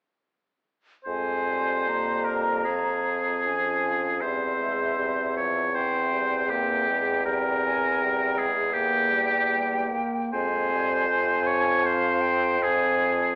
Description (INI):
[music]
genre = classical, slow romantic movement for wind quintet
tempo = 78 BPM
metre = 4/4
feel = uneven beats, rubato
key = F minor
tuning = A4 = 440 Hz
[part]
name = warm oboe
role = second line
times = 1.0-13.4 s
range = G4 to Db5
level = -27 LUFS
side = equal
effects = none
[part]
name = warm clarinet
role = accompaniment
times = 1.0-13.4 s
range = Bb3 to Db4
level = -40 LUFS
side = equal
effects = none
[part]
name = bright concert flute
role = melody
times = 1.1-13.4 s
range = E5 to Bb5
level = -34 LUFS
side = equal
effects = none
[part]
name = clear French horn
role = accompaniment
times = 1.1-13.4 s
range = E3 to Bb3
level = -37 LUFS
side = equal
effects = none
[part]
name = clear bassoon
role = bass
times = 1.1-13.4 s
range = E2 to F2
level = -31 LUFS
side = equal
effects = none
[sound]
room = wet recital hall reverb, RT60 1.5 s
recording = AM radio sound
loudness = -25 LUFS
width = mono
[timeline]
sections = 1.1-13.4 A section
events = none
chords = 1.1 Fm; 4.2 C/E; 7.3 C7/E; 10.3 Fm